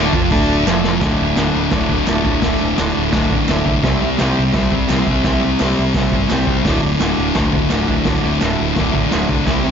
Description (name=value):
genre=garage rock duo or trio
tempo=170 BPM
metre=4/4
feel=straight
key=D mixolydian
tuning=A4 = 440 Hz
part: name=overdriven combo organ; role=sustained chords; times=0.0-9.7 s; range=E4 to A5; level=-27 LUFS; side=right 2 dB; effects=none
part: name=thick fuzz guitar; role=riff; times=0.0-9.7 s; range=D2 to C4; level=-16 LUFS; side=left 1 dB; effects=distortion
part: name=growling picked electric bass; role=bass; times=0.0-9.7 s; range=D1 to C2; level=-23 LUFS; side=equal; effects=overdrive
part: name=raw garage drum kit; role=drums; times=0.1-9.6 s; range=hi-hat, kick drum, snare drum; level=-20 LUFS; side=equal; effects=none
part: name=group handclap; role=percussion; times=0.7-9.2 s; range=none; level=-32 LUFS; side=right 10 dB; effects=none
room=light reverb, small room reverb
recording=nothing above 7.5 kHz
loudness=-14 LUFS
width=side -7 dB against mid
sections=0.0-1.0 A section; 1.0-9.7 B section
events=drum fill 0.7-1.0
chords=0.0 D5; 1.0 D; 3.8 C; 6.7 D